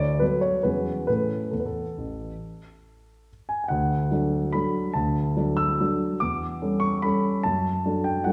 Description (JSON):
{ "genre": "classical, piano waltz", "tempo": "131-152 BPM", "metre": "3/4", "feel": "rubato", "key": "A major, D major from 3.7 s", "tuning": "A4 = 440 Hz", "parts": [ { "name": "dark grand piano", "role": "solo", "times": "0.0-8.3 s", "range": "A1 to E6", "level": "-25 LUFS", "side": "equal", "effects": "none" } ], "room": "wet recital hall reverb, RT60 1.4 s", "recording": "heard from further back in the room", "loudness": "-25 LUFS", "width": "mono", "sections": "0.0-3.7 A section; 3.7-8.3 B section", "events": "none", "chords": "0.0 Bm7/D; 0.6 E69; 1.1 A; 3.7 D; 6.2 A7/E; 7.4 D/F#" }